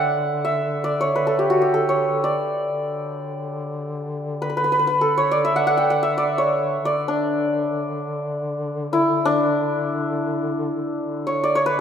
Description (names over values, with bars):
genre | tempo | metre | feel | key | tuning
Persian modal ensemble | free time | none | none | D dastgah mahur | A4 = 441 Hz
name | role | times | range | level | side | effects
santur | melody | 0.0-11.8 s | D4 to G5 | -20 LUFS | equal | none
dark duduk | drone | 0.0-11.8 s | D3 | -29 LUFS | left 2 dB | none
room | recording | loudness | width
wet scoring stage reverb, RT60 2.0 s | minimal, uncompressed stereo recording | -19 LUFS | side -8 dB against mid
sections
0.0-11.0 A section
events
none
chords
none